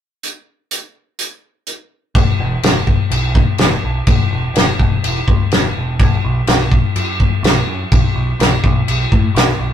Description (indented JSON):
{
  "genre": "rock, shoegaze and dream pop",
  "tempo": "125 BPM",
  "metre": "4/4",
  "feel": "straight",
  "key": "unclear",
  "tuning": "A4 = 442 Hz",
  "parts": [
    { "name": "loose indie drum kit", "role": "drums", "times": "0.2-9.5 s", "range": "crash cymbal, hi-hat, kick drum, snare drum", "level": "-14 LUFS", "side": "left 1 dB", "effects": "none" },
    { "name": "growling picked electric bass", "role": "bass", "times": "2.2-9.7 s", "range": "E1 to A2", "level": "-19 LUFS", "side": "right 1 dB", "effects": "overdrive" }
  ],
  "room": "moderate booth ambience, RT60 0.3 s",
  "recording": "rough rehearsal-room recording, tube saturation",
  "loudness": "-12 LUFS",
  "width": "side -9 dB against mid",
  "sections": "0.2-2.1 A section; 2.1-9.7 B section",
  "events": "none",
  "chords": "none",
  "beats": "| 0.23 0.71 1.19 1.67 | 2.15 2.63 3.11 3.59 | 4.07 4.55 5.04 5.51 | 6.00 6.48 6.96 7.44 | 7.92 8.40 8.88 9.36"
}